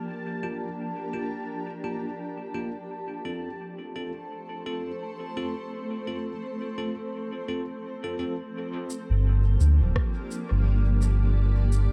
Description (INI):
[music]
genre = ambient dub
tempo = 85 BPM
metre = 4/4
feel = swing 57% on 16ths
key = G minor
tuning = A4 = 440 Hz
[part]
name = granular cloud pad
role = sustained chords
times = 0.0-11.9 s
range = F3 to D5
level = -37 LUFS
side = equal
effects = built-in reverb
[part]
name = bubbling stepped-filter texture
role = texture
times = 0.0-8.6 s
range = A5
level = -44 LUFS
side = equal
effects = chorus, built-in reverb
[part]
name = bell-like tine electric piano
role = stabs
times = 0.4-8.4 s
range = Bb3 to A4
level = -38 LUFS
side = equal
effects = dub echo
[part]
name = electronic shaker and rim click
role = drums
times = 0.4-11.9 s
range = none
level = -42 LUFS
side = equal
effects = overdrive, low-pass filter on snare, small room ambience, low-pass filter on perc, dub echo
[part]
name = round analog bass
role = bass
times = 9.1-11.9 s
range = D1 to D2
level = -23 LUFS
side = equal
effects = none
[part]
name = electronic kick drum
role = drums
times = 10.0-10.1 s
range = none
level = -29 LUFS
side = equal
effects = overdrive, small room ambience
[sound]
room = digital ambience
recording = echo-heavy mix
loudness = -28 LUFS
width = mono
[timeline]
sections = 0.0-8.5 A section; 8.5-11.9 B section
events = none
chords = 0.0 Gm7; 2.9 F; 8.5 Gm7